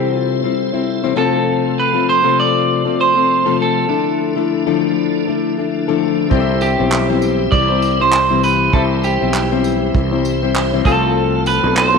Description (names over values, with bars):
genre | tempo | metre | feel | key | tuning
acoustic pop | 99 BPM | 4/4 | swing 60% on 16ths | C major | A4 = 442 Hz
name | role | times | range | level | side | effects
electric guitar at the edge of break-up | melody | 0.0-12.0 s | G4 to D5 | -17 LUFS | right 4 dB | none
fingerpicked plugged-in steel-string acoustic guitar | accompaniment | 0.0-12.0 s | C3 to C5 | -17 LUFS | left 8 dB | none
tonewheel organ | sustained chords | 0.0-12.0 s | C3 to A4 | -26 LUFS | right 2 dB | chorus vibrato, slow rotary speaker
bright grand piano | accompaniment | 6.3-12.0 s | C4 to F5 | -27 LUFS | left 7 dB | none
fretless electric bass | bass | 6.3-12.0 s | B1 to C2 | -20 LUFS | right 2 dB | none
cloth-damped thuddy drum kit | drums | 6.3-11.9 s | handclaps, kick drum, tambourine | -20 LUFS | right 3 dB | none
room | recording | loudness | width
wet echo chamber reverb, RT60 2.2 s | 1960s-style stereo | -13 LUFS | side -5 dB against mid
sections
0.0-12.0 A section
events
none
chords
0.0 C; 1.2 F/C; 3.9 Dmadd9; 6.3 C; 10.9 F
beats
0.25 0.86 | 1.46 2.07 2.68 3.28 | 3.89 4.49 5.10 5.71 | 6.31 6.92 7.52 8.13 | 8.74 9.34 9.95 10.55 | 11.16 11.77